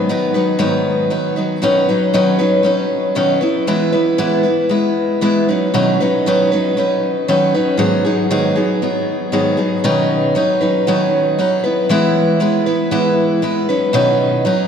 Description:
pop; 117 BPM; 4/4; straight; B major; A4 = 442 Hz
picked steel-string acoustic guitar; solo; 0.0-14.7 s; G#2 to B4; -13 LUFS; equal
wet cathedral reverb, RT60 4.8 s; recorded in a church or concert hall; -13 LUFS; side -7 dB against mid
0.0-1.6 A section; 1.6-9.8 B section; 9.8-14.7 A section
0.0 G#m7; 1.6 Badd9; 3.4 E; 5.5 Badd9; 7.8 G#m7; 9.8 Badd9; 11.6 E; 13.7 Badd9

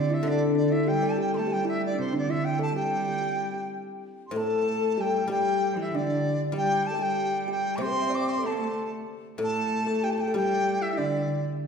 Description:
chinese traditional, Chinese chamber ensemble; 95 BPM; 2/4; straight; G zhi mode; A4 = 440 Hz
mellow dizi; melody; 0.0-11.5 s; C5 to D6; -29 LUFS; equal
kalimba; second line; 0.0-11.4 s; C4 to E5; -32 LUFS; equal
rich cello; second line; 0.0-11.5 s; C3 to C4; -31 LUFS; right 3 dB
guzheng; accompaniment; 0.0-2.1, 4.3-11.7 s; A2 to G3; -31 LUFS; left 4 dB
mellow hollow xiao; second line; 4.3-11.4 s; D4 to E5; -33 LUFS; left 8 dB
wet concert hall reverb, RT60 1.8 s; recorded in a church or concert hall; -24 LUFS; side -6 dB against mid
0.0-4.0 A section; 4.0-11.7 B section

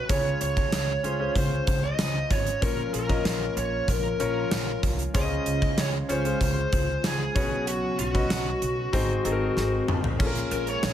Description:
1980s-style pop; 95 BPM; 4/4; straight; Db major; A4 = 441 Hz
lead guitar through a small cranked amp; melody; 0.0-10.9 s; Gb4 to Eb5; -29 LUFS; equal; overdrive
bright concert grand piano; accompaniment; 0.0-10.9 s; Ab2 to Eb5; -32 LUFS; left 2 dB
phased analog pad; sustained chords; 0.0-10.9 s; Db3 to Ab4; -35 LUFS; right 1 dB; phaser, chorus
upright bass; bass; 0.1-10.9 s; Ab1 to Db2; -30 LUFS; equal
gated 80s drum kit; drums; 0.1-10.9 s; crash cymbal, hi-hat, kick drum, snare drum, toms; -27 LUFS; equal
light reverb, small room ambience; -23 LUFS; side -10 dB against mid
0.0-10.2 A section
drum fill 9.6-10.2
0.1 Dbmaj7; 2.6 Bbm; 5.1 Dbmaj7; 7.4 Cbsus2; 8.9 Ab; 10.2 Bbm7

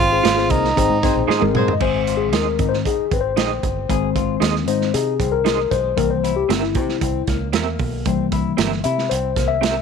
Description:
uptempo 1960s-style soul; 115 BPM; 4/4; straight; Ab major; A4 = 439 Hz
breathy tenor saxophone; melody; 0.0-1.3 s; Eb4 to F4; -18 LUFS; right 2 dB; slapback echo
mellow tine electric piano; accompaniment; 0.0-9.8 s; Ab2 to E5; -20 LUFS; left 10 dB; medium stereo tremolo
electric guitar through a small old amp; riff; 0.0-9.6 s; Ab3 to Ab4; -29 LUFS; left 11 dB
fingered electric bass; bass; 0.0-9.8 s; G1 to C3; -25 LUFS; right 2 dB
electric guitar through a small old amp; stabs; 0.2-9.7 s; C4 to F5; -24 LUFS; right 14 dB; tremolo
crunchy breakbeat drum kit; drums; 0.2-9.8 s; crash cymbal, hi-hat, kick drum, snare drum, toms; -23 LUFS; right 6 dB
mellow horn section; second line; 1.0-1.7 s; Eb4 to C5; -26 LUFS; right 2 dB
light reverb, small room ambience; 1960s-style stereo with parts hard left and right; -17 LUFS; side -6 dB against mid
0.0-1.8 A section; 1.8-9.8 B section
drum fill 1.3-1.8; tine electric piano solo 1.8-9.8
0.0 Fm; 0.8 Ab; 6.0 C7

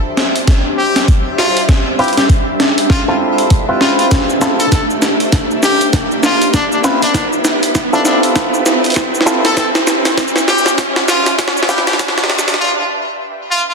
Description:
glitch hop; 99 BPM; 4/4; swing 60% on 16ths; D dorian; A4 = 440 Hz
riser; sound effects; 0.0-12.6 s; -22 LUFS; right 2 dB
ethereal airy pad; texture; 0.0-12.6 s; D4 to E5; -20 LUFS; equal; ensemble chorus, built-in reverb, phaser, sidechain pumping
boom bap sampler-style drum kit; drums; 0.2-12.7 s; hi-hat, shaker, snare drum; -14 LUFS; equal
electronic kick drum; drums; 0.5-12.1 s; -14 LUFS; equal
brilliant trumpet; melody; 0.8-13.7 s; D4 to A4; -18 LUFS; left 1 dB; tape echo
mellow clav; stabs; 2.0-11.9 s; C4 to B4; -18 LUFS; equal; auto-wah, sidechain pumping, low-pass filter, tape echo
moderate lush hall reverb, RT60 1.7 s; dense, heavily limited modern master, high-pass filter; -11 LUFS; side -4 dB against mid
0.0-13.7 A section
build-up 0.0-13.7; drum fill 0.0-12.6; riser 0.0-12.6; filter sweep on clav 0.0-13.7; filter sweep 0.0-13.7; break 12.6-13.7
0.0 Dm7

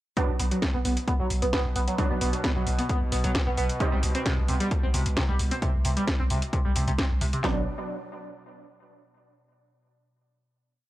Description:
driving peak-time techno; 132 BPM; 4/4; straight; B minor; A4 = 442 Hz
overdriven synth lead; riff; 0.2-7.7 s; C3 to C4; -30 LUFS; right 1 dB; tube saturation, lush chorus, sidechain pumping, tape echo
rave stab; stabs; 0.2-3.9, 7.4-7.6 s; F#3 to Eb4; -33 LUFS; right 2 dB; chorus, built-in reverb, sidechain pumping, tape echo
analog drone; drone; 1.0-7.5 s; B2; -37 LUFS; equal; chorus, sidechain pumping
techno drum kit; drums; 0.2-7.5 s; handclaps, kick drum, snare drum; -28 LUFS; equal
techno drum kit; drums; 0.2-7.4 s; hi-hat, snare drum; -32 LUFS; equal
growling 808-style bass; bass; 0.3-7.7 s; B1 to C2; -29 LUFS; equal; tube saturation, sidechain pumping, low-pass filter
little or no reverb; dry, gritty hardware recording, cassette tape; -24 LUFS; side -15 dB against mid
0.2-7.4 drop; 7.4-9.3 final chord
drop 0.2-7.4
0.2 Bm; 3.8 C5; 7.4 Bm

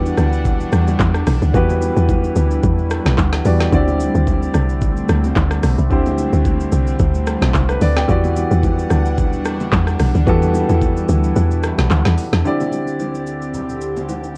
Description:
amapiano; 110 BPM; 4/4; swing 55% on 16ths; E minor; A4 = 440 Hz
warm concert grand piano; accompaniment; 0.0-14.4 s; D3 to G5; -24 LUFS; equal
airy breathy pad; sustained chords; 0.0-14.4 s; D2 to F#5; -28 LUFS; equal; chorus, phaser
woody log drum bass; bass; 0.0-12.4 s; B1 to E2; -19 LUFS; equal
smooth R&B drum kit; drums; 0.1-14.4 s; handclaps, hi-hat, kick drum, rim click, shaker, snare drum; -23 LUFS; equal
congas and bongos; percussion; 0.5-14.2 s; -31 LUFS; equal
light reverb; cassette tape; -17 LUFS; mono
0.0-12.5 A section; 12.5-14.4 B section
drop 0.0-12.5; kick muted 11.4-12.5
0.0 Em9; 3.7 D7sus4; 8.1 Em9; 12.5 D7sus4

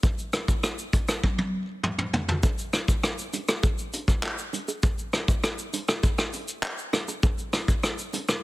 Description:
dancehall; 100 BPM; 4/4; straight
vintage brush drum kit; drums; 0.0-8.4 s; handclaps, hi-hat, kick drum, rim click, shaker, toms; -24 LUFS; equal; soft clipping on snare
bongos; percussion; 2.4-8.3 s; -36 LUFS; right 6 dB
studio reverb; dense, heavily limited modern master; -24 LUFS; side -19 dB against mid
0.0-2.4 A section; 2.4-8.4 B section
drum fill 1.2-2.4

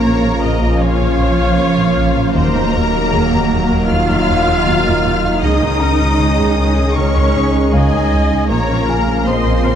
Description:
cinematic, hybrid orchestral and electronic film score; 78 BPM; 4/4; straight; Eb minor; A4 = 439 Hz
warm symphonic violin section; melody; 0.0-9.8 s; F5 to F6; -22 LUFS; left 4 dB
rich symphonic violin section; second line; 0.0-9.8 s; F4 to F5; -23 LUFS; left 2 dB
rich symphonic viola section; accompaniment; 0.0-9.8 s; Gb3 to Eb5; -23 LUFS; equal
mellow French horn section; sustained chords; 0.0-9.8 s; Bb3 to F4; -23 LUFS; left 3 dB
warbly tape-like pad; sustained chords; 0.0-9.8 s; Db3 to Bb4; -24 LUFS; right 2 dB; chorus, built-in reverb
warm trombone section; sustained chords; 0.0-9.8 s; Db3 to Ab3; -23 LUFS; right 2 dB
harp-like synth pluck; arpeggios; 0.0-9.8 s; Db3 to Bb4; -24 LUFS; left 4 dB
rich symphonic double bass section; bass; 0.0-9.7 s; Bb1 to Eb2; -20 LUFS; right 2 dB
saturated sub bass; bass; 0.0-9.8 s; Eb1 to Db2; -20 LUFS; equal
warm symphonic cello section; bass; 0.0-9.8 s; F3 to F4; -20 LUFS; right 3 dB
dark grand piano; texture; 5.8-9.8 s; F5 to Bb5; -29 LUFS; left 3 dB
moderate scoring stage reverb, RT60 1.8 s; dark, warm production; -12 LUFS; side -9 dB against mid
0.0-9.8 A section
0.0 Bbm; 2.3 Ebm; 5.4 Dbsus2; 8.5 Bbm

